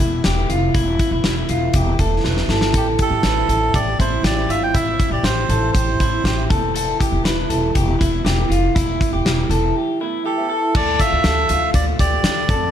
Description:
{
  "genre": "jangly indie pop",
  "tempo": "120 BPM",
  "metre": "4/4",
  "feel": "straight",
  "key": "unclear",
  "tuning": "A4 = 442 Hz",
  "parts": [
    { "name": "fingerpicked twelve-string acoustic guitar", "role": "accompaniment", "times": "0.0-12.7 s", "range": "A2 to A4", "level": "-24 LUFS", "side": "right 3 dB", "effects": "none" },
    { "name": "electric guitar through a small old amp", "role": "arpeggios", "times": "0.0-12.7 s", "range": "E4 to B4", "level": "-24 LUFS", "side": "left 5 dB", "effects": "none" },
    { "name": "upright bass", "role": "bass", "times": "0.0-12.7 s", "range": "E1 to F2", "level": "-21 LUFS", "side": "equal", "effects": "none" },
    { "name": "big rock drum kit", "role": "drums", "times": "0.0-12.6 s", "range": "crash cymbal, hi-hat, kick drum, snare drum", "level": "-20 LUFS", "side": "left 1 dB", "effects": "none" },
    { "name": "melodica", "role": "melody", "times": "2.8-6.4, 10.3-12.7 s", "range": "G4 to G5", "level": "-22 LUFS", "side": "right 5 dB", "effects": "none" }
  ],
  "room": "light reverb",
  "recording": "none",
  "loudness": "-16 LUFS",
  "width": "side -10 dB against mid",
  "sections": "0.0-10.7 A section; 10.7-12.7 B section",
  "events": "drum fill 2.2-2.7; break 9.8-10.7",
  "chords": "0.0 Esus4; 2.7 Am7; 6.5 Esus4; 10.7 Dm",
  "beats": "0.24 | 0.74 1.25 1.75 2.25 | 2.75 3.25 3.75 4.25 | 4.75 5.25 5.75 6.25 | 6.75 7.25 7.75 8.25 | 8.75 9.25 9.75 10.25 | 10.75 11.25 11.74 12.24"
}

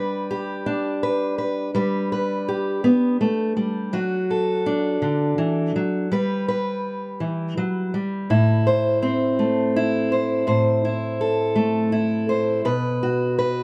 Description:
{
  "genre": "folk, solo fingerstyle acoustic guitar",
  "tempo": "55 BPM (dotted quarters)",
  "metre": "6/8",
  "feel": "straight",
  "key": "A dorian",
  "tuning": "A4 = 440 Hz",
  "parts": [
    { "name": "fingerpicked steel-string acoustic guitar", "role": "solo", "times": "0.0-13.6 s", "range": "A2 to C5", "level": "-22 LUFS", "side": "equal", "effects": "none" }
  ],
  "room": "moderate studio ambience, RT60 0.5 s",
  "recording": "dark, warm production",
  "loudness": "-22 LUFS",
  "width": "mono",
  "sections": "0.0-10.5 A section; 10.5-13.6 A section",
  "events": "none",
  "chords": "0.0 G; 3.9 D/F#; 6.1 G; 8.3 Am; 12.7 B5",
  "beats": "0.65 | 1.74 2.83 | 3.92 5.01 | 6.10 7.20 | 8.29 9.38 | 10.47 11.56 | 12.65"
}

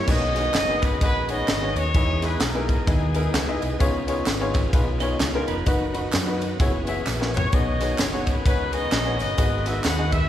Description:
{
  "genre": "uptempo gospel",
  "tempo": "129 BPM",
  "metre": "4/4",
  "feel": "swing 60% on 8ths",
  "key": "B major",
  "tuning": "A4 = 436 Hz",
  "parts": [
    { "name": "warm horn section", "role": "melody", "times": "0.0-3.8, 7.3-10.3 s", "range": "B3 to F#5", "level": "-27 LUFS", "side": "left 1 dB", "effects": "none" },
    { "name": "bright upright piano", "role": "accompaniment", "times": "0.0-10.2 s", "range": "G#2 to E5", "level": "-28 LUFS", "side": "left 2 dB", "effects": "none" },
    { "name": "bright tonewheel organ", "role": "sustained chords", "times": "0.0-10.3 s", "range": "B2 to B4", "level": "-32 LUFS", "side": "right 1 dB", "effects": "slow rotary speaker, overdrive, chorus vibrato" },
    { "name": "hollow-body short-scale fingered electric bass", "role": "bass", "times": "0.1-10.2 s", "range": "E#1 to F#2", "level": "-28 LUFS", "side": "equal", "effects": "none" },
    { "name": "tight funk drum kit", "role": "drums", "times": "0.1-10.2 s", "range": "crash cymbal, kick drum, ride cymbal, snare drum, toms", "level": "-24 LUFS", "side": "equal", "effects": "none" },
    { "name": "tambourine and handclaps", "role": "percussion", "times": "0.1-10.2 s", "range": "none", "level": "-36 LUFS", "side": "right 3 dB", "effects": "none" },
    { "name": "clean electric guitar", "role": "second line", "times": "5.0-5.9 s", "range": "D#4 to D#5", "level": "-34 LUFS", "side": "right 5 dB", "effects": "none" }
  ],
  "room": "wet scoring stage reverb, RT60 1.6 s",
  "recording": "recorded in a church or concert hall",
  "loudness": "-20 LUFS",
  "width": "side -11 dB against mid",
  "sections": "0.1-10.3 A section",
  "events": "drum fill 7.1-7.5",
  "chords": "0.1 B69; 1.9 Emaj7; 3.8 C#9; 5.7 B/F#; 6.6 F#9sus4; 7.5 B69; 9.4 G#m7",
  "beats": "| 0.07 0.54 1.01 1.48 | 1.94 2.41 2.87 3.34 | 3.81 4.27 4.74 5.20 | 5.67 6.13 6.60 7.06 | 7.53 7.99 8.46 8.92 | 9.38 9.85"
}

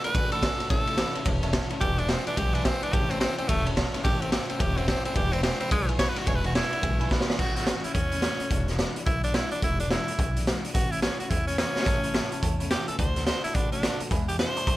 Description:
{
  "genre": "rockabilly",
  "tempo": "215 BPM",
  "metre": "4/4",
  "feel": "swing 62% on 8ths",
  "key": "A major",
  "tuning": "A4 = 440 Hz",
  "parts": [
    { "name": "raspy tenor saxophone", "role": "melody", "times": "0.0-14.8 s", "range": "G#3 to C#5", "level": "-30 LUFS", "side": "equal", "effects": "digital delay" },
    { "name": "picked steel-string acoustic guitar", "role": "accompaniment", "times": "0.0-14.8 s", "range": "E2 to F#4", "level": "-36 LUFS", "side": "left 4 dB", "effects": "none" },
    { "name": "warm upright piano", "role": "accompaniment", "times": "0.0-7.3, 11.9-14.8 s", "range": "B4 to D6", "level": "-38 LUFS", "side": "right 5 dB", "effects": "none" },
    { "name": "upright bass", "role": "bass", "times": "0.0-14.8 s", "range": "E1 to E2", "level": "-31 LUFS", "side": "equal", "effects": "none" },
    { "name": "raw garage drum kit", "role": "drums", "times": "0.0-14.8 s", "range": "crash cymbal, hi-hat, kick drum, ride cymbal, snare drum", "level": "-26 LUFS", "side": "equal", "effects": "none" }
  ],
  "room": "little or no reverb",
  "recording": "none",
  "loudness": "-24 LUFS",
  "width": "side -16 dB against mid",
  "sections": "0.0-7.4 A section; 7.4-14.8 B section",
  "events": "drum fill 7.1, 11.7",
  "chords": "0.0 D; 0.7 A; 1.8 E7; 2.9 A; 5.2 E7; 7.4 A; 8.5 E7; 10.7 A; 13.0 D; 14.1 E7",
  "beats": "0.15 0.43 | 0.70 0.98 1.26 1.54 | 1.82 2.10 2.37 2.65 | 2.93 3.21 3.49 3.77 | 4.04 4.32 4.60 4.88 | 5.16 5.44 5.71 5.99 | 6.27 6.55 6.83 7.11 | 7.39 7.67 7.95 8.23 | 8.51 8.79 9.07 9.35 | 9.63 9.91 10.19 10.47 | 10.75 11.03 11.31 11.59 | 11.87 12.15 12.43 12.71 | 12.99 13.27 13.55 13.83 | 14.11 14.39 14.67"
}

